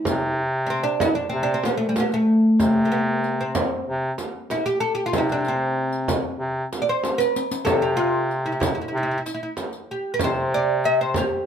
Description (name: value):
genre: Arabic maqam ensemble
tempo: 95 BPM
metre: 4/4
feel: straight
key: C maqam rast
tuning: A4 = 442 Hz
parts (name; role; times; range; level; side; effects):
- oud; melody; 0.0-11.5 s; G3 to E5-50c; -22 LUFS; equal; none
- clear bass clarinet; bass; 0.1-11.2 s; C3; -24 LUFS; equal; none
- frame drum; percussion; 0.1-11.3 s; none; -26 LUFS; right 2 dB; none
- riq; percussion; 0.1-11.3 s; none; -33 LUFS; left 5 dB; none
room: moderate studio reverb, RT60 0.6 s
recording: none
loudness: -20 LUFS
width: side -8 dB against mid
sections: 0.0-11.5 A section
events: drum fill 7.0-7.7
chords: none